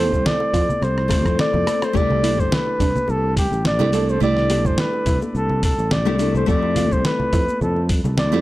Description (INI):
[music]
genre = sunset chillout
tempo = 106 BPM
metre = 4/4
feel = swing 54% on 16ths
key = C major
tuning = A4 = 441 Hz
[part]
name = mellow flugelhorn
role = melody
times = 0.0-8.4 s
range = G4 to D5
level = -22 LUFS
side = equal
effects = tape echo
[part]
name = nylon-string guitar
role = accompaniment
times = 0.0-8.4 s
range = A3 to A4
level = -24 LUFS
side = moving between left 6 dB and right 5 dB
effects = auto-pan, tape echo
[part]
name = soft round pluck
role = arpeggios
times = 0.0-7.6 s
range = A3 to A4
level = -30 LUFS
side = right 4 dB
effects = none
[part]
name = sustaining fretless electric bass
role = bass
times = 0.0-8.4 s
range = G1 to F2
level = -22 LUFS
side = equal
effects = tube saturation
[part]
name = dusty soul sampler-style drum kit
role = drums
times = 0.1-8.3 s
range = congas, hi-hat, rim click, shaker, snare drum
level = -24 LUFS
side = equal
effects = small room reverb
[part]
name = electronic kick drum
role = drums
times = 0.1-8.0 s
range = none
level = -21 LUFS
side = equal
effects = small room reverb
[part]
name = bongos and congas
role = percussion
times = 0.1-8.4 s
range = none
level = -31 LUFS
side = left 2 dB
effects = none
[sound]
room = studio reverb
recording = dry, gritty hardware recording, transformer saturation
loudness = -17 LUFS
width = side -16 dB against mid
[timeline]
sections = 0.0-2.0 A section; 2.0-8.4 A section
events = drum fill 0.8-2.0; kick drops out 1.4-2.0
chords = 0.0 Fmaj7; 2.0 C69; 6.5 Fmaj7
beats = 0.25 0.82 1.39 | 1.95 2.52 3.08 3.65 | 4.21 4.78 5.35 5.91 | 6.48 7.05 7.61 8.18